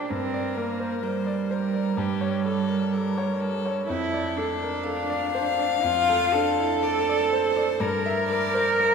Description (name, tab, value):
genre	classical, slow romantic movement for piano trio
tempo	59-65 BPM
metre	4/4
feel	rubato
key	D minor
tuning	A4 = 440 Hz
part	warm violin	melody	0.0-8.9 s	G4 to F5	-29 LUFS	left 11 dB	none
part	dark cello	second line	0.0-8.9 s	G3 to Bb4	-25 LUFS	right 4 dB	none
part	bright grand piano	accompaniment	0.0-8.9 s	F2 to E5	-29 LUFS	left 1 dB	none
room	wet concert hall reverb, RT60 1.9 s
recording	minimal, uncompressed stereo recording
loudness	-22 LUFS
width	side -6 dB against mid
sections	0.0-8.9 A section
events	none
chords	0.1 Gm; 2.0 A7/G; 3.9 Dm/F; 7.8 Edim/G